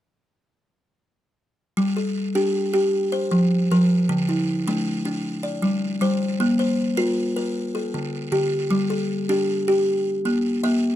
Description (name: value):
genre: southern african traditional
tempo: 104 BPM (dotted quarters)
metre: 12/8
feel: straight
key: G equiheptatonic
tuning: A4 = 438 Hz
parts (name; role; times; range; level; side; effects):
- buzzing kalimba; arpeggios; 1.8-11.0 s; D3 to E5-43c; -20 LUFS; equal; none
room: light reverb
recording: close, detailed microphones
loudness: -20 LUFS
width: side -12 dB against mid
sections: 1.8-11.0 A section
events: none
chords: 1.8 G5; 2.9 F5; 4.1 D5; 5.2 G5; 6.4 Bb5; 7.6 D5; 8.7 G5; 9.9 N.C.